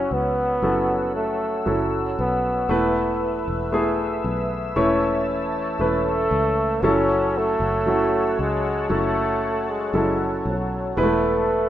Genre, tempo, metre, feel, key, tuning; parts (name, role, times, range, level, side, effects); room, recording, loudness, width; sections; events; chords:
pop; 58 BPM; 4/4; straight; F# minor; A4 = 441 Hz
brilliant trombone; melody; 0.0-11.7 s; F#3 to C#4; -24 LUFS; equal
clear baby grand piano; accompaniment; 0.0-11.7 s; E3 to C#5; -23 LUFS; equal
warm analog pad; sustained chords; 0.0-11.7 s; B4 to E6; -30 LUFS; left 2 dB; chorus
fingered electric bass; bass; 0.0-11.7 s; E1 to C#2; -29 LUFS; equal
moderate lush hall reverb, RT60 3.1 s; rough home demo mix; -20 LUFS; side -12 dB against mid
0.0-11.7 A section
0.0 F#m7; 2.7 Esus4; 4.8 A/E; 6.8 F#m7; 11.0 Esus4